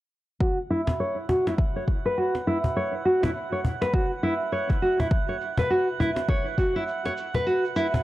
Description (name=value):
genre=organic downtempo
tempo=102 BPM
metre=4/4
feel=swing 59% on 16ths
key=unclear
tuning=A4 = 440 Hz
part: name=nylon-string guitar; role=arpeggios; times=0.4-7.9 s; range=E4 to C#5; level=-24 LUFS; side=equal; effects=low-pass filter, tape echo
part: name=electronic kick drum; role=drums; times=0.4-6.7 s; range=none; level=-24 LUFS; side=equal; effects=overdrive
part: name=shaker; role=drums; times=0.4-8.0 s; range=none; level=-57 LUFS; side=equal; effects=none
part: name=drifting glass-harmonics texture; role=texture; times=1.2-8.0 s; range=F#5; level=-36 LUFS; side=right 6 dB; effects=chorus, built-in reverb
part: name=cajon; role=percussion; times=0.9-8.0 s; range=none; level=-28 LUFS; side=left 1 dB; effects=none
room=light reverb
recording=dry, gritty hardware recording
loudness=-23 LUFS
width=side -16 dB against mid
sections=0.4-8.0 A section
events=filter sweep on nylon-string guitar 0.4-8.0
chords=0.4 F#5